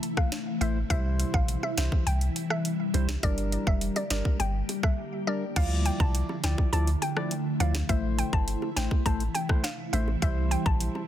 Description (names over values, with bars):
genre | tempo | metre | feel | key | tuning
dancehall | 103 BPM | 4/4 | straight | D minor | A4 = 440 Hz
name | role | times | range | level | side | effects
ethereal airy pad | sustained chords | 0.0-11.1 s | C3 to G4 | -34 LUFS | equal | ensemble chorus, built-in reverb, phaser
island pop drum kit | drums | 0.0-10.9 s | crash cymbal, hi-hat, kick drum, rim click, snare drum | -28 LUFS | equal | none
mallet-like synth pluck | melody | 0.2-10.8 s | D5 to A5 | -34 LUFS | equal | chorus, tape echo
percussive organ stab | accompaniment | 0.6-11.0 s | F3 to D5 | -34 LUFS | left 2 dB | chorus
punchy sub bass | bass | 0.6-10.9 s | F1 to D2 | -28 LUFS | equal | none
bongos | percussion | 1.6-11.1 s | none | -41 LUFS | right 3 dB | none
room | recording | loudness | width
digital ambience | dense, heavily limited modern master | -25 LUFS | side -11 dB against mid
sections
0.0-5.6 A section; 5.6-11.1 B section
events
break 5.0-5.6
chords
0.0 Am; 0.9 C; 3.2 Gm; 5.6 Dmadd9; 7.9 Am; 10.2 C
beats
0.32 | 0.90 1.49 2.07 2.65 | 3.23 3.81 4.40 4.98 | 5.56 6.15 6.73 7.31 | 7.89 8.48 9.06 9.64 | 10.22 10.81